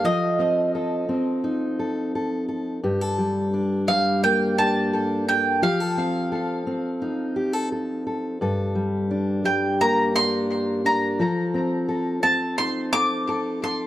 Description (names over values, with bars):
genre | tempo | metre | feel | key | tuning
folk | 86 BPM | 4/4 | straight | unclear | A4 = 439 Hz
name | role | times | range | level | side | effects
mandolin | melody | 0.0-13.9 s | Eb5 to D6 | -23 LUFS | right 1 dB | tape echo
fingerpicked steel-string acoustic guitar | accompaniment | 0.0-13.9 s | G2 to A4 | -23 LUFS | left 1 dB | none
room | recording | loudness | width
small room ambience | dry, close 1970s-style studio recording | -21 LUFS | side -14 dB against mid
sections
0.0-13.9 A section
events
none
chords
0.0 F7; 2.8 Gmadd9; 5.6 F7; 8.4 Gmadd9; 11.2 F7